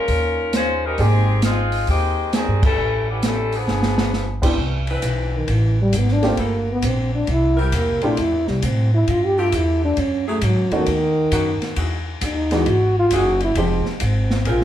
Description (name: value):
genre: jazz, big band swing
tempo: 134 BPM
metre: 4/4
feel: swing 66% on 8ths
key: Ab major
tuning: A4 = 440 Hz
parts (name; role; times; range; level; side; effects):
- mellow saxophone section; melody; 0.0-4.4 s; Eb3 to C5; -21 LUFS; left 2 dB; none
- warm baby grand piano; accompaniment; 0.0-1.3, 4.4-13.8 s; E3 to G4; -22 LUFS; right 1 dB; none
- upright bass; bass; 0.1-14.6 s; F1 to A2; -21 LUFS; equal; none
- open jazz drum kit; drums; 0.1-14.6 s; crash cymbal, hi-hat, kick drum, ride cymbal, snare drum; -25 LUFS; equal; none
- clear saxophone section; sustained chords; 4.9-14.6 s; D#3 to B4; -27 LUFS; left 2 dB; none
- breathy trombone; melody; 5.4-14.6 s; Eb3 to G4; -20 LUFS; equal; none
room: wet club reverb, RT60 0.6 s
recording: heard from further back in the room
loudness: -17 LUFS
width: side -11 dB against mid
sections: 0.0-4.6 A section; 4.6-14.6 B section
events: band accent 2.6; drum fill 3.7-4.1; trombone solo 4.6-14.6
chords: 0.1 Eb7(no3); 1.0 Abmaj7; 2.8 A9; 3.7 G7b9; 4.6 Cmaj9; 6.4 Gm9; 7.3 C7; 8.2 Fmaj9; 10.0 F#m9; 10.9 Badd9; 11.8 Emaj9; 13.6 Fm7